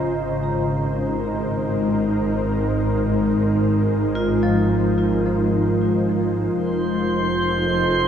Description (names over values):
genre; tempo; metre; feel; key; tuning
ambient; free time; none; none; unclear; A4 = 441 Hz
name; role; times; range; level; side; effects
ethereal airy pad; sustained chords; 0.0-8.1 s; F3 to Eb5; -21 LUFS; equal; ensemble chorus, built-in reverb
vibraphone with medium hard mallets; arpeggios; 0.0-8.1 s; F3 to Bb5; -25 LUFS; equal; tape echo
rich symphonic double bass section; bass; 0.0-8.1 s; F1 to Ab1; -25 LUFS; right 1 dB; none
drifting glass-harmonics texture; texture; 6.7-8.1 s; C5 to C6; -22 LUFS; right 2 dB; chorus, built-in reverb
room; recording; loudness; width
wet concert hall reverb, RT60 2.3 s; cassette tape; -18 LUFS; side -8 dB against mid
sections
0.0-8.1 A section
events
fade-in on vibraphone 0.0-8.1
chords
0.1 Abadd9; 6.6 F7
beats
free time